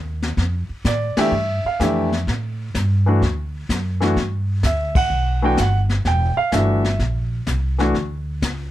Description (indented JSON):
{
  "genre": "jazz piano trio",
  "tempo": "127 BPM",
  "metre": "4/4",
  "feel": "swing 68% on 8ths",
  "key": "D major",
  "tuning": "A4 = 440 Hz",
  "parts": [
    { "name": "upright bass", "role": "bass", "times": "0.0-8.7 s", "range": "E1 to A2", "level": "-21 LUFS", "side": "equal", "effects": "none" },
    { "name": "jazz brush drum kit", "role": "drums", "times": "0.2-8.7 s", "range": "brushed snare drum, crash cymbal, hi-hat, kick drum, ride cymbal, snare drum", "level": "-24 LUFS", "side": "left 1 dB", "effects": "none" },
    { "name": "warm concert grand piano", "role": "melody", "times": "0.9-7.9 s", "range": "E3 to G5", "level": "-20 LUFS", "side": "equal", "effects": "none" }
  ],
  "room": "little or no reverb",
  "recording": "close, detailed microphones",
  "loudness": "-18 LUFS",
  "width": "side -13 dB against mid",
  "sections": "0.0-8.7 A section",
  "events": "band accent 1.1, 4.9",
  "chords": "0.4 F6; 2.3 A7(no3); 3.2 D; 4.2 Gmaj7; 6.1 Em11; 7.0 Bbsus2; 7.9 Dmaj7(no3)",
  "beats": "| 0.37 0.84 1.32 1.79 | 2.27 2.74 3.21 3.69 | 4.16 4.63 5.11 5.58 | 6.05 6.53 7.00 7.47 | 7.95 8.42"
}